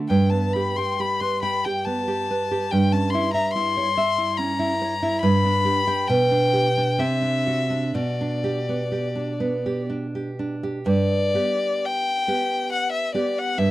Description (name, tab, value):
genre	romantic duo for violin and classical guitar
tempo	60-72 BPM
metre	3/4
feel	rubato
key	G major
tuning	A4 = 440 Hz
part	nylon-string guitar	accompaniment	0.0-13.7 s	G2 to G5	-22 LUFS	right 2 dB	none
part	rich violin	melody	0.1-13.7 s	D5 to C6	-24 LUFS	left 4 dB	none
room	little or no reverb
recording	dry, close 1970s-style studio recording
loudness	-20 LUFS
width	side -15 dB against mid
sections	0.0-10.9 A section; 10.9-13.7 B section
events	none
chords	0.1 G; 2.7 Gdim7; 5.2 G; 6.1 G/B; 7.0 D7/C; 7.9 G/B; 10.9 G